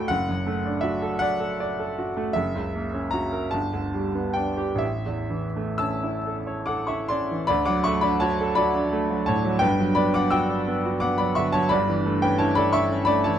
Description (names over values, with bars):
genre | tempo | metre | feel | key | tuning
classical, romantic nocturne for solo piano | 40-59 BPM (dotted quarters) | 6/8 | rubato | D major | A4 = 437 Hz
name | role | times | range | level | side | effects
bright grand piano | solo | 0.0-13.4 s | F#1 to E6 | -22 LUFS | equal | none
room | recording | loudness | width
light reverb | dark, warm production | -22 LUFS | side -10 dB against mid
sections
0.0-7.5 A section; 7.5-13.4 B section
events
none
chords
0.1 D/F#; 2.4 F#7; 3.5 G; 4.8 A; 7.5 D; 9.6 Gmaj7; 11.7 A7/G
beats
| 0.10 1.22 | 2.35 3.53 | 4.82 6.24 | 7.50 8.57 | 9.62 10.67 | 11.70 12.74